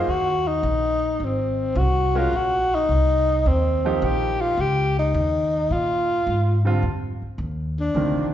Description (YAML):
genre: jazz, small-group swing and bop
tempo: 107 BPM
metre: 4/4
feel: swing 68% on 8ths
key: unclear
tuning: A4 = 440 Hz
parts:
  - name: breathy tenor saxophone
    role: melody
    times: 0.0-8.3 s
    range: C4 to G4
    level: -22 LUFS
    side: left 1 dB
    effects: none
  - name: warm concert grand piano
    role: accompaniment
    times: 0.0-8.3 s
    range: C3 to Bb4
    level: -27 LUFS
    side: right 4 dB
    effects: none
  - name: upright bass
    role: bass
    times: 0.0-8.3 s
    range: Ab1 to Bb2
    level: -23 LUFS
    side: equal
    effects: none
room: moderate recital hall reverb, RT60 1.4 s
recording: recorded in a church or concert hall, nothing above 7.7 kHz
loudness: -19 LUFS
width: side -11 dB against mid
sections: 0.0-8.3 A section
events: tenor saxophone solo 0.0-8.3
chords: 0.0 Ab7; 3.5 Eb7; 5.7 Bb7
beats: 0.08 0.65 | 1.21 1.77 2.33 2.90 | 3.46 4.02 4.58 5.14 | 5.71 6.27 6.83 7.39 | 7.96